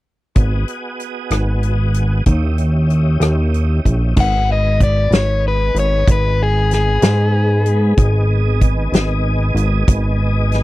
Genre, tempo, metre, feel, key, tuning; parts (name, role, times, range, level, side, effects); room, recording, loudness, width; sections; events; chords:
slow blues; 63 BPM (dotted quarters); 12/8; straight; G# minor; A4 = 440 Hz
tonewheel organ; sustained chords; 0.3-10.6 s; B3 to D#5; -26 LUFS; right 1 dB; chorus vibrato, slow rotary speaker
fat analog bass; bass; 0.4-10.6 s; G#1 to G#2; -15 LUFS; equal
natural country drum kit; drums; 0.4-10.6 s; crash cymbal, hi-hat, kick drum, rim click, snare drum; -15 LUFS; equal
overdriven electric guitar; melody; 4.2-8.6 s; G#4 to F#5; -18 LUFS; left 3 dB
little or no reverb; dry, close 1970s-style studio recording; -13 LUFS; side -18 dB against mid
0.4-4.2 A section; 4.2-10.6 B section
0.4 G#m7; 2.3 D#7b9; 4.2 G#m